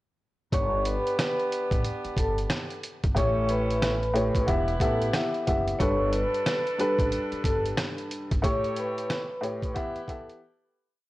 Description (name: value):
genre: hip hop, boom-bap hip-hop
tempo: 91 BPM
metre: 4/4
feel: swing 61% on 16ths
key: unclear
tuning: A4 = 442 Hz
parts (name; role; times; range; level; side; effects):
- vibraphone with medium hard mallets; melody; 0.5-10.3 s; A4 to C#6; -30 LUFS; equal; high-pass filter, low-pass filter, analog delay
- bright saxophone section; stabs; 0.5-10.4 s; B3 to C#5; -36 LUFS; right 1 dB; high-pass filter, low-pass filter, analog delay
- upright bass; bass; 0.5-8.4 s; E1 to A1; -30 LUFS; equal; none
- trip hop sampler-style drum kit; drums; 0.5-10.4 s; hi-hat, kick drum, rim click, snare drum; -29 LUFS; equal; none
- dark upright piano; accompaniment; 3.1-10.4 s; G2 to E5; -29 LUFS; left 1 dB; high-pass filter, low-pass filter
room: small room ambience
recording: dry, gritty hardware recording, transformer saturation, cassette tape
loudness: -24 LUFS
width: side -17 dB against mid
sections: 0.5-11.1 hook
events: break 8.4-11.1; fade-out 8.4-11.1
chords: 0.5 G; 3.2 A7; 4.5 Em; 5.8 Gadd9; 8.4 A7; 9.8 Em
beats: | 0.53 1.19 1.85 2.50 | 3.16 3.82 4.48 5.14 | 5.80 6.46 7.12 7.78 | 8.44 9.10 9.76